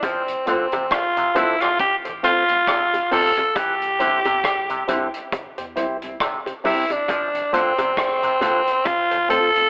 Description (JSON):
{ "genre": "roots reggae", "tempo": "68 BPM", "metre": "4/4", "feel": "swing 58% on 16ths", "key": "F major", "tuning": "A4 = 440 Hz", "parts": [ { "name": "raspy tenor saxophone", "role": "melody", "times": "0.0-9.7 s", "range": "C4 to A4", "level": "-22 LUFS", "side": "equal", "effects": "tape echo" }, { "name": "auto-wah clav", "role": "arpeggios", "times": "0.0-8.6 s", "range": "C3 to F3", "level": "-30 LUFS", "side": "equal", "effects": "overdrive" }, { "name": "soft dub sub bass", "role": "bass", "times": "0.0-9.7 s", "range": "F1 to E2", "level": "-52 LUFS", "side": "equal", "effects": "none" }, { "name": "vintage drum kit", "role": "drums", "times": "0.0-9.7 s", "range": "hi-hat, kick drum, rim click", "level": "-29 LUFS", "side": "equal", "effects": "dub echo" }, { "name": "bongos", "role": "percussion", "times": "0.0-9.1 s", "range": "none", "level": "-34 LUFS", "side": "equal", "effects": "none" }, { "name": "mellow tonewheel organ", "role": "accompaniment", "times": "0.3-9.6 s", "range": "F2 to F4", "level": "-37 LUFS", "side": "equal", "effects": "chorus vibrato" }, { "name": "mellow electric guitar", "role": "accompaniment", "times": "0.5-9.7 s", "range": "G3 to F4", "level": "-39 LUFS", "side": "equal", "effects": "tape echo" }, { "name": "percussive organ stab", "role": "stabs", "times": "0.5-9.5 s", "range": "C4 to C5", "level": "-29 LUFS", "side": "equal", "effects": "chorus" } ], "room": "moderate echo chamber reverb, RT60 2.0 s", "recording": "telephone sound", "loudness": "-21 LUFS", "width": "mono", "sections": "0.0-9.7 A section", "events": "none", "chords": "0.0 F; 3.6 C; 7.1 F" }